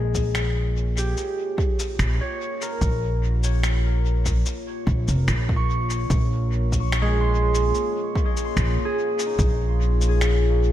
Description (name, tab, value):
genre	ambient dub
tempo	73 BPM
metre	4/4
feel	straight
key	Bb dorian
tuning	A4 = 440 Hz
part	deep dark ambient pad	sustained chords	0.0-10.7 s	Bb3 to Db5	-33 LUFS	left 1 dB	chorus, built-in reverb
part	upright bass	bass	0.0-10.7 s	F1 to Bb1	-21 LUFS	equal	none
part	electronic cabasa and finger snaps	drums	0.1-10.4 s	none	-32 LUFS	left 1 dB	dub echo
part	electronic kick drum	drums	0.1-9.6 s	none	-26 LUFS	equal	overdrive
part	concert harp	arpeggios	1.0-10.7 s	Ab3 to Db6	-27 LUFS	equal	vintage 12-bit sampler grit, ping-pong delay
room	light reverb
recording	none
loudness	-20 LUFS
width	side -12 dB against mid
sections	0.0-10.7 A section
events	fade-in on ambient pad 0.0-10.7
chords	0.0 Bbm7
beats	0.35 1.17 1.99 | 2.81 3.63 4.46 5.28 | 6.10 6.92 7.74 8.57 | 9.39 10.21